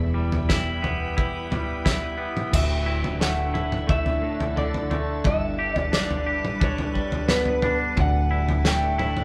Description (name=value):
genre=post-rock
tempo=88 BPM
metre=4/4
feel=straight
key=unclear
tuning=A4 = 440 Hz
part: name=soft additive organ-like pad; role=sustained chords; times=0.0-9.2 s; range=D3 to G5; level=-35 LUFS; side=equal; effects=ensemble chorus, built-in reverb
part: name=twangy electric guitar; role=arpeggios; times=0.0-9.2 s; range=D2 to G4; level=-30 LUFS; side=equal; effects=spring reverb
part: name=hollow-body short-scale fingered electric bass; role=bass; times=0.0-9.2 s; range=D1 to G1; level=-31 LUFS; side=equal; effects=none
part: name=loose indie drum kit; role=drums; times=0.3-9.2 s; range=crash cymbal, kick drum, snare drum, toms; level=-28 LUFS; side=equal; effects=none
part: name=electric guitar through a small old amp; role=melody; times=2.5-9.2 s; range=B4 to G5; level=-31 LUFS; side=equal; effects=none
room=wet studio reverb, RT60 0.8 s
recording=band playing live in one room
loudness=-24 LUFS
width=mono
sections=0.0-2.5 A section; 2.5-9.2 B section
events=none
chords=0.0 Em; 2.5 Dsus2; 5.2 Gadd9; 8.0 Dsus2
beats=0.49 1.17 1.85 | 2.53 3.21 3.89 4.57 | 5.25 5.93 6.61 7.29 | 7.96 8.64